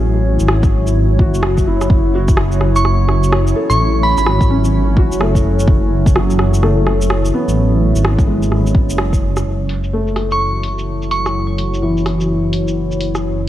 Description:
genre	future garage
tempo	127 BPM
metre	4/4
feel	swing 63% on 16ths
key	F# minor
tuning	A4 = 440 Hz
part	felt-muted upright piano	accompaniment	0.0-13.5 s	E3 to A4	-22 LUFS	equal	sidechain pumping, tape echo
part	deep dark ambient pad	sustained chords	0.0-13.5 s	F#3 to C#5	-20 LUFS	equal	chorus, built-in reverb, sidechain pumping
part	dark detuned saw bass	bass	0.0-13.5 s	F#1 to A1	-16 LUFS	equal	sidechain pumping
part	deep house drum kit	drums	0.4-13.2 s	hi-hat, rim click, shaker	-22 LUFS	right 1 dB	low-pass filter on perc, low-pass filter on snare, low-pass filter on hats
part	electronic kick drum	drums	0.6-9.2 s	none	-14 LUFS	equal	none
part	glassy synth bell	melody	2.8-4.2, 10.3-11.5 s	B5 to C#6	-19 LUFS	right 2 dB	chorus, vintage 12-bit sampler grit, tape echo
room	light reverb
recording	cassette tape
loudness	-12 LUFS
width	side -13 dB against mid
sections	0.0-9.5 A section; 9.5-13.5 B section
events	filter sweep on drum 9.5-13.5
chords	0.0 F#m7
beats	| 0.01 0.48 0.96 1.43 | 1.90 2.38 2.85 3.32 | 3.79 4.26 4.74 5.21 | 5.68 6.15 6.63 7.10 | 7.57 8.04 8.52 8.99 | 9.46 9.93 10.41 10.88 | 11.35 11.82 12.30 12.77 | 13.24

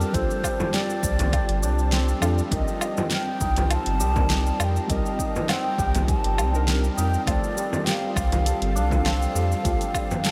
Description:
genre	organic downtempo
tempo	101 BPM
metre	4/4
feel	swing 53% on 16ths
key	C dorian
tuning	A4 = 440 Hz
part	breathy mellow ney	melody	0.0-10.3 s	Bb4 to A5	-32 LUFS	equal	analog delay
part	deep mellow chord stab	accompaniment	0.0-10.3 s	F3 to Eb5	-36 LUFS	equal	none
part	ethereal airy pad	sustained chords	0.0-10.3 s	G3 to A5	-35 LUFS	equal	ensemble chorus, built-in reverb, sidechain pumping
part	santur	arpeggios	0.0-10.3 s	G3 to Bb4	-34 LUFS	equal	analog delay
part	warm sub bass	bass	0.0-9.7 s	G1 to F2	-26 LUFS	equal	none
part	deep house drum kit	drums	0.0-10.3 s	hi-hat, shaker, snare drum, woodblock	-32 LUFS	equal	overdrive
part	electronic kick drum	drums	0.1-10.1 s	none	-30 LUFS	equal	overdrive
part	frame drum	percussion	0.6-10.2 s	none	-35 LUFS	equal	none
room	moderate huge ambient reverb, RT60 7.8 s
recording	dreamy mix soaked in reverb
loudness	-23 LUFS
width	mono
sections	0.0-10.3 A section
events	none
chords	0.0 Dm; 2.5 Cm7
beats	| 0.14 0.74 1.33 1.93 | 2.52 3.11 3.71 4.30 | 4.89 5.49 6.08 6.68 | 7.27 7.87 8.46 9.05 | 9.65 10.24

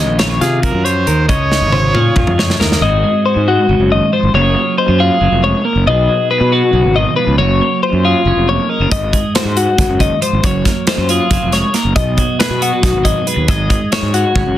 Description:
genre	math rock and midwest emo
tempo	276 BPM (eighths)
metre	7/8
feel	straight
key	unclear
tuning	A4 = 439 Hz
part	twelve-string electric guitar	accompaniment	0.0-14.6 s	Ab2 to Db5	-18 LUFS	right 5 dB	spring reverb
part	twelve-string electric guitar	arpeggios	0.0-14.6 s	F4 to Eb5	-16 LUFS	left 5 dB	plate reverb
part	fuzz fingered electric bass	bass	0.0-14.6 s	F1 to C3	-16 LUFS	equal	overdrive
part	modern studio drum kit	drums	0.2-2.8, 8.9-14.5 s	hi-hat, kick drum, snare drum, toms	-16 LUFS	equal	soft clipping on kick, soft clipping on snare
part	clear trumpet	melody	0.4-2.3 s	Ab4 to Db5	-18 LUFS	right 3 dB	slapback echo, plate reverb
room	moderate studio reverb, RT60 0.6 s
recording	dense, heavily limited modern master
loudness	-11 LUFS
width	side -12 dB against mid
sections	0.0-2.8 A section; 2.8-14.6 B section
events	drum fill 1.5-2.8, 14.4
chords	0.0 Ebm9; 1.3 Dbmaj9; 2.8 Ab7; 4.3 Gbmaj9#11; 5.9 Cb6; 7.4 Gbmaj9#11; 8.9 Ab7; 10.4 Gbmaj9#11; 12.0 Cb6; 13.5 Ab7sus4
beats	0.20 0.41 0.63 0.85 1.07 | 1.29 1.51 1.73 1.94 2.16 2.38 2.60 | 2.82 3.03 3.25 3.47 3.69 3.91 4.12 | 4.34 4.56 4.78 4.99 5.21 5.43 5.65 | 5.87 6.08 6.30 6.52 6.74 6.95 7.17 | 7.39 7.61 7.82 8.04 8.26 8.48 8.70 | 8.91 9.13 9.35 9.57 9.78 10.00 10.22 | 10.44 10.65 10.87 11.09 11.31 11.53 11.74 | 11.96 12.18 12.40 12.61 12.83 13.05 13.27 | 13.48 13.70 13.92 14.14 14.35 14.57

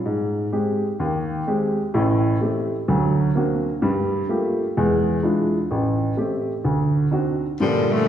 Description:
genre	jazz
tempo	127 BPM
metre	4/4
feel	swing 68% on 8ths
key	unclear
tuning	A4 = 440 Hz
part	warm baby grand piano	accompaniment	0.1-8.0 s	A1 to G4	-19 LUFS	equal	none
part	warm saxophone section	melody	7.6-8.1 s	Bb2 to A3	-18 LUFS	left 2 dB	none
room	wet recital hall reverb, RT60 1.7 s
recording	heard from further back in the room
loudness	-19 LUFS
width	side -10 dB against mid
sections	0.0-7.6 A section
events	none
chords	0.1 Abmaj7; 1.9 Am7; 2.9 Daug7; 3.8 Gm9; 4.8 E7b9; 5.7 Am7; 6.6 D7b9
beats	| 0.05 0.52 0.99 1.46 | 1.93 2.40 2.88 3.35 | 3.82 4.29 4.76 5.23 | 5.70 6.17 6.65 7.12 | 7.59 8.06

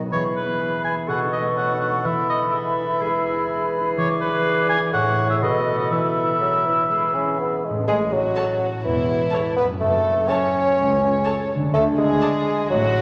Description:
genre	cinematic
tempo	124 BPM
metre	4/4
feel	straight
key	E major, A major from 7.9 s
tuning	A4 = 441 Hz
part	concert harp	arpeggios	0.0-13.0 s	F#2 to D5	-30 LUFS	equal	none
part	bright clarinet	second line	0.1-7.6 s	G#4 to A4	-32 LUFS	equal	none
part	hollow concert flute	second line	0.1-7.6 s	B5 to D6	-29 LUFS	equal	none
part	warm oboe	second line	0.1-7.6 s	B4 to G#5	-26 LUFS	equal	none
part	mellow bassoon	accompaniment	0.1-13.0 s	A2 to C#4	-25 LUFS	equal	none
part	warm studio violin section	second line	7.9-13.0 s	E4 to C#5	-32 LUFS	equal	none
part	clear chamber double bass section	bass	7.9-13.0 s	E1 to D2	-35 LUFS	equal	none
part	dark chamber cello section	bass	7.9-13.0 s	C#2 to A2	-30 LUFS	equal	none
part	warm chamber violin section	melody	8.4-12.3 s	A5	-38 LUFS	equal	none
part	dark chamber viola section	accompaniment	8.4-12.3 s	A4 to D5	-36 LUFS	equal	none
room	wet scoring stage reverb, RT60 2.0 s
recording	none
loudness	-21 LUFS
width	mono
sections	0.0-7.9 A section; 7.9-13.0 B section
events	none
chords	0.1 E; 1.1 B9; 2.0 E; 4.0 E7; 4.9 Amaj7; 5.4 B7; 5.9 E; 7.9 A; 9.8 F#m; 11.7 D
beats	| 0.12 0.60 1.08 1.57 | 2.05 2.53 3.01 3.49 | 3.97 4.45 4.93 5.42 | 5.91 6.40 6.89 7.38 | 7.87 8.36 8.84 9.33 | 9.81 10.29 10.78 11.26 | 11.74 12.22 12.70

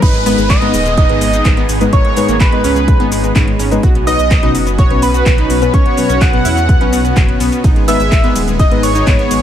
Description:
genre	progressive house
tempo	126 BPM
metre	4/4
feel	straight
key	G# minor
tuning	A4 = 440 Hz
part	wide unison lead	melody	0.0-9.4 s	B4 to F#5	-18 LUFS	equal	wide subtle chorus, sidechain pumping, tape echo
part	soft synth bell	second line	0.0-9.4 s	B5 to F#6	-24 LUFS	right 3 dB	chorus, sidechain pumping, digital delay
part	supersaw pad	sustained chords	0.0-9.4 s	B3 to G#4	-22 LUFS	right 1 dB	sidechain pumping
part	analog pluck	arpeggios	0.0-9.4 s	G#3 to F#4	-20 LUFS	equal	chorus, sidechain pumping, digital delay
part	dark detuned saw bass	bass	0.0-9.4 s	D#1 to E2	-18 LUFS	equal	sidechain pumping
part	electronic kick drum	drums	0.0-9.2 s	none	-12 LUFS	equal	none
part	house drum kit	drums	0.0-9.4 s	crash cymbal, handclaps, hi-hat, ride cymbal, shaker	-22 LUFS	equal	none
part	downlifter	sound effects	0.0-3.8 s	none	-26 LUFS	right 1 dB	none
part	deep mellow chord stab	stabs	0.3-9.2 s	G#2 to C#5	-19 LUFS	left 3 dB	chorus, sidechain pumping, digital delay
room	digital ambience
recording	none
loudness	-9 LUFS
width	side -10 dB against mid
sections	0.0-9.4 A section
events	drop 0.0-9.4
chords	0.0 G#m; 3.8 Bsus2; 7.6 G#m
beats	| 0.02 0.50 0.97 1.45 | 1.93 2.40 2.88 3.36 | 3.83 4.31 4.79 5.26 | 5.74 6.21 6.69 7.17 | 7.64 8.12 8.59 9.07

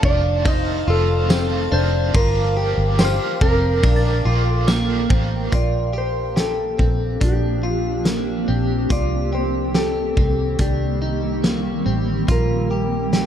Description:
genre	dream pop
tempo	71 BPM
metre	4/4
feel	straight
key	Bb major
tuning	A4 = 440 Hz
part	raw garage guitar	accompaniment	0.0-5.5 s	F2 to G4	-30 LUFS	right 4 dB	overdrive, tremolo, lush chorus
part	granular cloud pad	sustained chords	0.0-13.3 s	D3 to D6	-26 LUFS	right 2 dB	built-in reverb
part	clean electric guitar	arpeggios	0.0-13.3 s	Bb3 to G4	-26 LUFS	left 1 dB	lush chorus, digital delay
part	vintage muted fingered electric bass	bass	0.0-13.3 s	F1 to C2	-22 LUFS	equal	none
part	loose indie drum kit	drums	0.0-13.3 s	hi-hat, kick drum, ride cymbal, snare drum, tambourine	-20 LUFS	equal	none
part	clean lap steel guitar	melody	0.1-13.3 s	G4 to Eb5	-24 LUFS	left 1 dB	digital delay
part	synth chime	texture	3.0-5.9 s	F6 to A6	-34 LUFS	equal	ensemble chorus, digital delay
room	light reverb, small room ambience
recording	dark, warm production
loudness	-17 LUFS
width	side -9 dB against mid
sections	0.0-5.5 A section; 5.5-13.3 B section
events	none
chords	0.0 F7; 2.1 Gm7; 3.8 Bb6; 5.5 Bb69; 8.9 Cm7; 12.3 Bb69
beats	0.45 1.30 | 2.14 2.99 3.83 4.68 | 5.52 6.37 7.21 8.06 | 8.90 9.75 10.59 11.44 | 12.28 13.13

